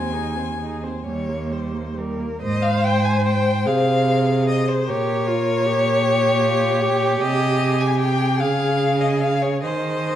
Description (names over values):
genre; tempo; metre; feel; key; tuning
classical, slow romantic movement for string quartet; 43-54 BPM (dotted quarters); 6/8; rubato; Ab major; A4 = 440 Hz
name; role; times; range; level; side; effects
warm violin; melody; 0.0-10.2 s; F4 to Ab5; -28 LUFS; left 8 dB; none
rich violin; second line; 0.0-10.2 s; Ab4 to Ab5; -23 LUFS; left 3 dB; none
rich viola; accompaniment; 0.0-10.2 s; G3 to C5; -24 LUFS; right 2 dB; none
rich cello; bass; 0.0-10.2 s; Eb2 to Eb3; -22 LUFS; right 3 dB; none
room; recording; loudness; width
wet recital hall reverb, RT60 1.4 s; dark, warm production; -18 LUFS; side -11 dB against mid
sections
0.0-2.4 A section; 2.4-10.2 B section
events
none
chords
0.0 Ab/Eb; 1.0 Eb; 2.4 Ab; 4.9 Bbm6; 7.2 Ab/C; 8.4 Db; 9.6 Ab/Eb